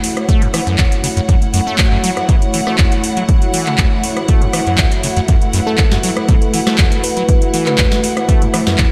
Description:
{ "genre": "acid house", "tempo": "120 BPM", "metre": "4/4", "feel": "straight", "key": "F# minor", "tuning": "A4 = 439 Hz", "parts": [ { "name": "warm analog pad", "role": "sustained chords", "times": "0.0-8.9 s", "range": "A3 to C#5", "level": "-24 LUFS", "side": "equal", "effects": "chorus, sidechain pumping" }, { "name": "booming analog drum machine", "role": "drums", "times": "0.0-8.9 s", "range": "handclaps, hi-hat, rim click, snare drum", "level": "-22 LUFS", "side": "equal", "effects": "none" }, { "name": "muted studio string section", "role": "texture", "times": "0.0-8.9 s", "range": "A3 to F#5", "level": "-24 LUFS", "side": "equal", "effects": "sidechain pumping" }, { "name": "acid bass, saw", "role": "riff", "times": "0.3-8.9 s", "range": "E2 to A3", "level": "-22 LUFS", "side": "equal", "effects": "tube saturation, analog chorus, analog delay" }, { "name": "electronic kick drum", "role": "drums", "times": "0.3-8.9 s", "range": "none", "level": "-15 LUFS", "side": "equal", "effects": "none" }, { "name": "thumb-piano-like synth pluck", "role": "melody", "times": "5.7-7.8 s", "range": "A4 to B4", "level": "-25 LUFS", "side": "equal", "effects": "chorus, tape echo" } ], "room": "moderate lush hall reverb, RT60 2.1 s", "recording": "dreamy mix soaked in reverb", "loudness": "-14 LUFS", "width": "mono", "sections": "0.0-8.9 A section", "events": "none", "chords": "0.0 F#m7" }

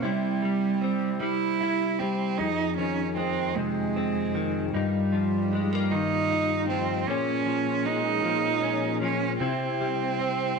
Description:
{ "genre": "pop", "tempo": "51 BPM (dotted quarters)", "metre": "6/8", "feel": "straight", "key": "F minor", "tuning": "A4 = 440 Hz", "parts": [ { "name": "warm cello", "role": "melody", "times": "0.0-10.6 s", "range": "G3 to E4", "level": "-26 LUFS", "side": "right 8 dB", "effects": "none" }, { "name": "direct-recorded clean electric guitar", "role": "accompaniment", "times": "0.0-10.6 s", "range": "F2 to C5", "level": "-29 LUFS", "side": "left 3 dB", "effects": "double-tracked left and right" }, { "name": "mellow tonewheel organ", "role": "sustained chords", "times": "2.4-10.6 s", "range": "F2 to Ab4", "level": "-31 LUFS", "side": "left 13 dB", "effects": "overdrive, fast rotary speaker" } ], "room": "moderate echo chamber reverb, RT60 1.4 s, studio reverb", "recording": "1960s-style stereo with parts hard left and right", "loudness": "-24 LUFS", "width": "side -4 dB against mid", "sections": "0.0-10.6 A section", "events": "none", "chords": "0.0 C; 2.4 Fm7; 4.7 Ebadd9/G; 7.1 Bbm7; 9.4 C" }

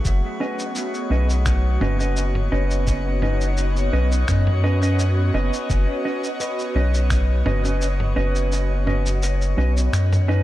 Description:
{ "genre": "ambient dub", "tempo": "85 BPM", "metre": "4/4", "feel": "swing 54% on 16ths", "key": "unclear", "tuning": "A4 = 443 Hz", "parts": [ { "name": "airy breathy pad", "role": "sustained chords", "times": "0.0-10.4 s", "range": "A3 to D#5", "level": "-28 LUFS", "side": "equal", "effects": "chorus, phaser" }, { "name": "handpan", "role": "arpeggios", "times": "0.0-10.4 s", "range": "C#4 to D#5", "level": "-35 LUFS", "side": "right 1 dB", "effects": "dub echo" }, { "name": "soft dub sub bass", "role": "bass", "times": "0.0-10.4 s", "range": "F#1 to F#2", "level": "-19 LUFS", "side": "equal", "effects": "none" }, { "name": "lo-fi sampler-style drum kit", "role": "drums", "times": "0.0-10.3 s", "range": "cabasa, finger snaps, toms", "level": "-30 LUFS", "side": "equal", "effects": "studio reverb, dub echo" }, { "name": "drifting glass-harmonics texture", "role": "texture", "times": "0.0-10.4 s", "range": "F#4 to F#5", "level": "-36 LUFS", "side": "left 2 dB", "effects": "chorus, built-in reverb" }, { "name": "electronic kick drum", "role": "drums", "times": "0.1-7.3 s", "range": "none", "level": "-24 LUFS", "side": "equal", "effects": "studio reverb" }, { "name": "mellow electric guitar", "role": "stabs", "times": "0.4-10.4 s", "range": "C#4 to D#5", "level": "-27 LUFS", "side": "right 2 dB", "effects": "vintage 12-bit sampler grit, dub echo" } ], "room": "little or no reverb", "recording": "none", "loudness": "-18 LUFS", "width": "side -15 dB against mid", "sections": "0.0-10.4 A section", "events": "kick drops out 8.5-10.4", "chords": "0.0 Badd9/F#" }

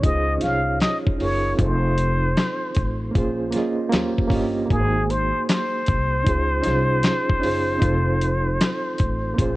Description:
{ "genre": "lo-fi hip hop", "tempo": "77 BPM", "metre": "4/4", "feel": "swing 62% on 16ths", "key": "Db major", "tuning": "A4 = 440 Hz", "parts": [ { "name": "trumpet with plunger mute", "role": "melody", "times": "0.0-9.6 s", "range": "Ab4 to F5", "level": "-24 LUFS", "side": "left 1 dB", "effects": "none" }, { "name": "reed electric piano", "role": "accompaniment", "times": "0.0-9.6 s", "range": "Bb3 to Eb5", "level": "-25 LUFS", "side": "right 2 dB", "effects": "overdrive, fast tremolo" }, { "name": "upright bass", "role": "bass", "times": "0.0-9.6 s", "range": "F1 to Eb2", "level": "-24 LUFS", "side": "equal", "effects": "none" }, { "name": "dusty soul sampler-style drum kit", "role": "drums", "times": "0.0-9.6 s", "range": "handclaps, hi-hat, kick drum, snare drum", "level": "-23 LUFS", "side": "equal", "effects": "overdrive, vintage 12-bit sampler grit" } ], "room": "light reverb", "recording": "cassette tape", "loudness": "-19 LUFS", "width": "side -18 dB against mid", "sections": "0.0-9.6 A section", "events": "none", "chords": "0.0 Dbmaj9; 1.6 F7; 3.1 Bbm9; 3.9 Eb13; 4.7 Ab7; 6.3 Dbmaj9; 7.8 F7" }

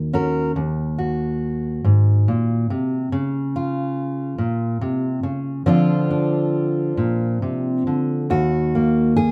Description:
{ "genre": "folk, solo fingerstyle acoustic guitar", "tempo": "46 BPM (dotted quarters)", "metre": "6/8", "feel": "rubato", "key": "Eb dorian", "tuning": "A4 = 437 Hz", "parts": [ { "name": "fingerpicked steel-string acoustic guitar", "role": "solo", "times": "0.0-9.3 s", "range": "Eb2 to Bb4", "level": "-21 LUFS", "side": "equal", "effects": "none" } ], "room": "light reverb", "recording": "band playing live in one room", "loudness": "-21 LUFS", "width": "mono", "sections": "0.0-8.3 A section; 8.3-9.3 B section", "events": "none", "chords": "0.0 Ebm7; 3.1 Db; 5.6 Bbadd9/D; 8.3 Ebm" }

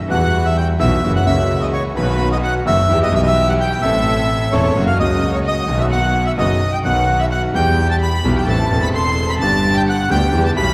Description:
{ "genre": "tango", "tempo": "129 BPM", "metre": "4/4", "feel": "rubato", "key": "E harmonic minor", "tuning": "A4 = 440 Hz", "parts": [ { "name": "bandoneon", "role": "melody", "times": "0.1-10.7 s", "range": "B4 to C6", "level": "-22 LUFS", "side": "equal", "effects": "none" }, { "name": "warm chamber violin section", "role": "second line", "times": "0.1-10.7 s", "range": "B4 to C6", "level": "-29 LUFS", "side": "equal", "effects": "none" }, { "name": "warm grand piano", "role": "accompaniment", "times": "0.1-10.7 s", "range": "E1 to A4", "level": "-22 LUFS", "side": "equal", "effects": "none" }, { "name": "warm symphonic string section", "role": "stabs", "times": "0.1-10.7 s", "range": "G3 to A4", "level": "-30 LUFS", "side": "equal", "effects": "none" }, { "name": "rich double bass", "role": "bass", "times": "0.1-10.7 s", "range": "E1 to E2", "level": "-21 LUFS", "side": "equal", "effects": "none" } ], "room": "wet concert hall reverb, RT60 2.1 s", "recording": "recorded in a church or concert hall", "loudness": "-17 LUFS", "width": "mono", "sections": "0.1-10.7 A section", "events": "none", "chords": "0.1 Emadd9; 1.0 F#7; 2.0 B; 2.9 Em; 3.8 Am; 4.8 F#; 5.7 B; 7.5 Em; 8.5 Am; 9.4 G" }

